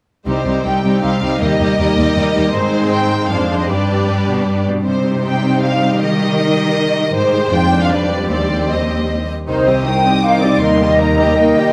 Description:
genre	classical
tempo	158 BPM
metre	3/4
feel	straight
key	C minor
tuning	A4 = 440 Hz
part	warm symphonic violin section	melody	0.3-11.7 s	C5 to Eb6	-23 LUFS	equal	none
part	warm symphonic violin section	second line	0.3-11.7 s	D4 to Eb5	-25 LUFS	equal	none
part	warm symphonic viola section	accompaniment	0.3-11.7 s	Eb3 to Eb4	-23 LUFS	equal	none
part	concert harp	arpeggios	0.3-11.7 s	F2 to C5	-21 LUFS	equal	none
part	rich symphonic cello section	bass	0.3-11.7 s	C2 to Eb3	-22 LUFS	equal	none
part	flute section	second line	9.5-11.7 s	C5 to G5	-17 LUFS	equal	none
room	moderate scoring stage reverb, RT60 1.5 s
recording	none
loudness	-15 LUFS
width	mono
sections	0.3-9.5 A section; 9.5-11.7 A section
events	none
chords	0.3 Cm; 1.4 Eb; 2.5 Ab; 3.3 Dm7b5/F; 3.7 G; 4.9 Cm; 6.0 Eb; 7.1 Abmaj7; 7.5 Dm7b5/F; 7.9 G7/F; 8.3 Cm/Eb; 9.5 Cm; 10.6 Eb

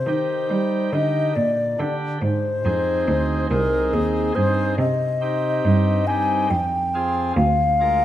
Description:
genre	classical, baroque-style sonata movement with continuo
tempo	70 BPM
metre	3/4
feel	straight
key	unclear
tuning	A4 = 440 Hz
part	mellow baroque flute	melody	0.0-8.0 s	Ab4 to Ab5	-22 LUFS	left 3 dB	none
part	pipe organ, cornet	accompaniment	0.0-8.0 s	C2 to Bb4	-24 LUFS	right 2 dB	none
part	rich cello	bass	0.0-8.0 s	C2 to G3	-23 LUFS	right 2 dB	none
room	moderate recital hall reverb, RT60 1.4 s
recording	none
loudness	-18 LUFS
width	side -12 dB against mid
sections	0.0-8.0 A section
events	none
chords	0.0 Cm; 1.4 Gm/Bb; 2.2 Ab; 4.8 Cm; 6.5 Fm; 7.4 Bb7/D

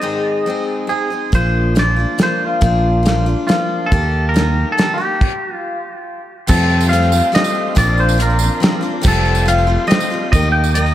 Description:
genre	folk rock and heartland rock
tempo	140 BPM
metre	3/4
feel	straight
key	F mixolydian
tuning	A4 = 435 Hz
part	twangy electric guitar	melody	0.0-10.9 s	F4 to G5	-18 LUFS	equal	slapback echo, tape echo
part	picked steel-string acoustic guitar	accompaniment	0.0-10.9 s	F2 to Ab4	-21 LUFS	left 2 dB	slapback echo
part	fingered electric bass	bass	1.3-10.9 s	F1 to F2	-16 LUFS	right 1 dB	none
part	damped 70s drum kit	drums	1.3-10.8 s	crash cymbal, hi-hat, kick drum, snare drum	-18 LUFS	equal	none
part	tonewheel organ	sustained chords	6.5-10.9 s	A4 to Eb6	-28 LUFS	right 1 dB	slow rotary speaker, overdrive, chorus vibrato
part	tambourine	percussion	6.5-10.9 s	none	-30 LUFS	right 14 dB	none
room	moderate lush hall reverb, RT60 2.0 s, studio reverb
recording	big arena sound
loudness	-13 LUFS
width	side -12 dB against mid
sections	0.0-6.5 A section; 6.5-10.9 B section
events	stop 5.2-6.5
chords	0.0 Ab; 1.3 Bb; 3.9 Eb; 6.5 Fadd9; 7.8 Bbadd9; 9.0 Fadd9; 10.3 Eb

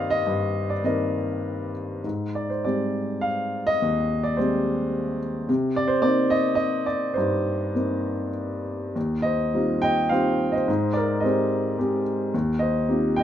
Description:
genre	classical, lyrical solo piano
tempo	98-113 BPM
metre	3/4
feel	rubato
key	C minor, Eb major from 9.0 s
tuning	A4 = 440 Hz
part	dark grand piano	solo	0.0-13.2 s	Eb2 to G5	-22 LUFS	equal	none
room	light reverb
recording	minimal, uncompressed stereo recording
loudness	-22 LUFS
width	side -10 dB against mid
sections	0.0-9.0 A section; 9.0-13.2 B section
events	none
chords	0.0 Cm7/G; 2.0 Abmaj7; 5.5 Cm7; 9.0 Eb69; 10.7 Abmaj7; 12.3 Eb69

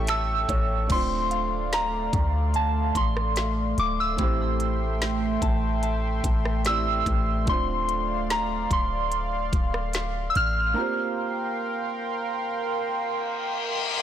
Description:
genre	contemporary R&B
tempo	73 BPM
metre	4/4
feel	straight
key	D minor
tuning	A4 = 440 Hz
part	felt-muted upright piano	accompaniment	0.0-14.0 s	G3 to A5	-34 LUFS	right 6 dB	none
part	warm analog pad	sustained chords	0.0-14.0 s	A3 to C#6	-30 LUFS	right 1 dB	chorus
part	warm 808-style bass	bass	0.0-10.7 s	D1 to D2	-28 LUFS	left 1 dB	none
part	soft synth bell	melody	0.1-13.2 s	A5 to F6	-27 LUFS	right 1 dB	chorus, phaser, tape echo
part	trap drum kit	drums	0.1-10.5 s	crash cymbal, finger snaps, hi-hat, kick drum, rim click, snare drum	-28 LUFS	equal	soft clipping on snare
part	soft synth bell	texture	1.3-12.4 s	F5 to C6	-40 LUFS	left 1 dB	chorus, phaser, tape echo
part	reverse cymbal	sound effects	13.1-14.0 s	none	-30 LUFS	left 7 dB	none
room	light reverb, digital ambience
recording	blown-out, overdriven recording, overdrive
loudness	-23 LUFS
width	side -10 dB against mid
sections	0.9-14.0 A section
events	felt piano fill 0.0-0.9; break 10.8-14.0; reverse cymbal 13.1-14.0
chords	0.0 A7; 0.9 Dm7; 4.2 Am7; 7.5 Dm7; 10.8 C7sus4

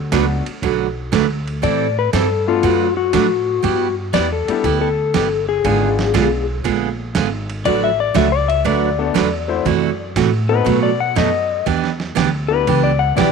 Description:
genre	country, western swing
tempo	120 BPM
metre	4/4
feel	swing 68% on 8ths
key	D major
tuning	A4 = 438 Hz
part	upright bass	bass	0.0-13.3 s	G1 to B2	-22 LUFS	equal	none
part	clear upright piano	accompaniment	0.1-13.3 s	G3 to C5	-24 LUFS	left 10 dB	none
part	picked steel-string acoustic guitar	accompaniment	0.1-13.3 s	B2 to B4	-19 LUFS	right 12 dB	none
part	boom bap sampler-style drum kit	drums	0.1-13.3 s	hi-hat, kick drum, ride cymbal, snare drum	-26 LUFS	right 4 dB	none
part	clean lap steel guitar	second line	1.6-13.3 s	F4 to F#5	-19 LUFS	left 10 dB	none
room	light reverb, studio ambience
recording	1960s-style stereo with parts hard left and right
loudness	-15 LUFS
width	side -5 dB against mid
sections	0.0-13.3 A section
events	electric slide guitar solo 0.0-13.3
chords	0.0 D6; 1.6 Am7; 2.6 D6; 3.6 G6; 5.6 G#dim7; 7.7 D6; 9.7 F#m7b5; 10.7 B7; 11.7 Em7

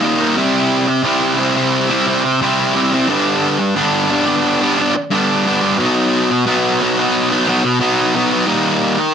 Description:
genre	rock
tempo	89 BPM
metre	4/4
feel	straight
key	G major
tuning	A4 = 440 Hz
part	fuzz guitar	solo	0.0-9.1 s	G2 to E4	-13 LUFS	equal	distortion, slapback echo
room	moderate studio reverb, RT60 0.6 s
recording	none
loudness	-13 LUFS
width	side -7 dB against mid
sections	0.0-9.1 A section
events	none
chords	0.4 C; 3.1 G; 5.8 B; 8.5 Eb

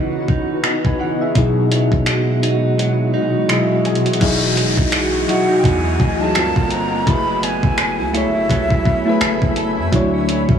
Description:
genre	contemporary R&B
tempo	84 BPM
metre	4/4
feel	swing 58% on 16ths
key	E major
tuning	A4 = 440 Hz
part	soft electric-piano-like synth keys	accompaniment	0.0-10.6 s	B2 to G#5	-20 LUFS	left 3 dB	chorus, low-pass filter
part	granular cloud pad	sustained chords	0.0-10.6 s	B2 to C#6	-23 LUFS	left 1 dB	built-in reverb, low-pass filter
part	direct-recorded clean electric guitar	arpeggios	0.0-10.6 s	G2 to A4	-22 LUFS	right 6 dB	phaser, low-pass filter, digital delay
part	clean 12-bit digital drum machine	drums	0.3-10.6 s	crash cymbal, finger snaps, hi-hat, kick drum	-19 LUFS	equal	soft clipping on snare
part	long sustained 808-style bass	bass	4.2-10.6 s	E1 to F#2	-24 LUFS	equal	none
part	downlifter	sound effects	4.2-9.9 s	none	-27 LUFS	left 2 dB	none
part	breathy mellow silver concert flute	melody	5.3-9.6 s	E5 to B5	-22 LUFS	equal	low-pass filter
room	light reverb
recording	blown-out, overdriven recording, overdrive, small room ambience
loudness	-14 LUFS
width	side -8 dB against mid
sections	0.0-4.2 A section; 4.2-10.6 B section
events	filter sweep 0.0-4.2; kick muted 2.8-4.2; synth keys fill 3.1-4.2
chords	0.0 C#m9; 1.4 Emaj9/B; 4.2 Emaj9; 6.4 Gm11; 7.1 F#m11; 9.9 Dmaj9

